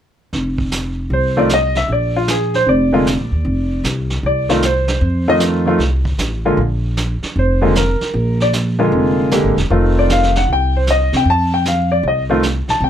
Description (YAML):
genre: jazz piano trio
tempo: 154 BPM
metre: 4/4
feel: swing 66% on 8ths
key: F mixolydian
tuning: A4 = 440 Hz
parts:
  - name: upright bass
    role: bass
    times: 0.3-12.9 s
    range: E1 to C3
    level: -17 LUFS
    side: equal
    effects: none
  - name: vintage brush drum kit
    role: drums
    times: 0.3-12.9 s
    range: brushed snare drum, hi-hat, kick drum, snare drum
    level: -24 LUFS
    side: right 3 dB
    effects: none
  - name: clear grand piano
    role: melody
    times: 1.1-12.9 s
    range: D3 to A5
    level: -16 LUFS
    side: left 1 dB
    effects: none
room: light reverb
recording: none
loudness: -14 LUFS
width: side -10 dB against mid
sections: 0.3-12.9 A section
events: none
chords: 0.3 F7(no3); 1.9 Bb7; 3.5 F7(no3); 6.6 Bb7; 9.7 F7